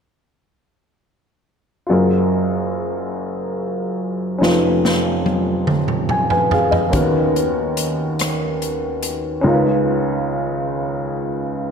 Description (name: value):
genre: slow gospel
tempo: 48 BPM (dotted quarters)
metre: 6/8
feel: straight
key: F# major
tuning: A4 = 440 Hz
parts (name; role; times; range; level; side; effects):
- warm upright piano; accompaniment; 1.9-11.7 s; E#1 to G#5; -18 LUFS; equal; none
- swinging big-band drum kit; drums; 4.4-9.2 s; hi-hat, kick drum, rim click, snare drum, toms; -21 LUFS; right 1 dB; none
room: wet plate reverb, RT60 2.6 s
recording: dreamy mix soaked in reverb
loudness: -17 LUFS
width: side -6 dB against mid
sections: 1.9-11.7 A section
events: drum fill 4.4-6.9; upright piano fill 5.7-6.9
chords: 1.9 F#maj9; 4.4 C#9/E#; 6.9 Bmaj9/D#; 9.4 C#9